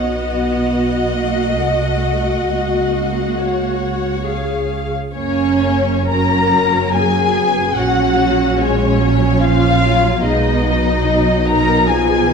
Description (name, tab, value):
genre	classical, slow romantic movement for string orchestra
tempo	62-75 BPM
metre	3/4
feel	rubato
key	F# major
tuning	A4 = 439 Hz
part	warm studio violin section	melody	0.0-12.3 s	C#5 to A#5	-20 LUFS	left 4 dB	none
part	rich studio violin section	second line	0.0-12.3 s	C#4 to D#5	-22 LUFS	left 1 dB	none
part	warm studio viola section	accompaniment	0.0-12.3 s	D#3 to G#4	-18 LUFS	equal	none
part	clear studio cello section	bass	0.0-12.3 s	F#2 to B3	-23 LUFS	right 2 dB	none
part	rich studio double bass section	bass	0.0-12.3 s	F#1 to C#2	-21 LUFS	right 3 dB	none
room	wet scoring stage reverb, RT60 1.9 s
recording	dark, warm production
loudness	-14 LUFS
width	side -6 dB against mid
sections	0.0-5.1 A section; 5.1-12.3 B section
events	none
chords	0.0 Bmaj7; 1.6 Cdim7; 2.5 F#/C#; 4.3 C#; 5.1 F#; 7.8 F#/A#; 10.2 B6